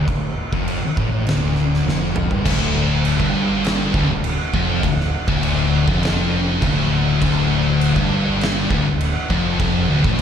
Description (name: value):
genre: stoner and doom metal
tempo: 101 BPM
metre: 4/4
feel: straight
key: D minor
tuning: A4 = 440 Hz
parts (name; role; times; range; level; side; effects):
- thick fuzz guitar; riff; 0.0-10.2 s; D2 to A2; -22 LUFS; left 8 dB; distortion, slapback echo
- thick fuzz guitar; riff; 0.0-10.2 s; D2 to A2; -24 LUFS; right 8 dB; distortion
- growling fingered electric bass; bass; 0.0-10.2 s; D1 to A1; -23 LUFS; equal; overdrive
- oversized low-tuned drum kit; drums; 0.1-10.2 s; crash cymbal, kick drum, snare drum, toms; -22 LUFS; right 1 dB; none
- heavy high-gain guitar; riff; 2.5-10.2 s; D2 to A2; -24 LUFS; right 1 dB; distortion, slapback echo
room: light reverb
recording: live gig heard through the venue's PA, recital hall reverb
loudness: -16 LUFS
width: side -8 dB against mid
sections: 0.0-2.5 A section; 2.5-10.2 B section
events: drum fill 1.9-2.5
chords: 0.0 Dm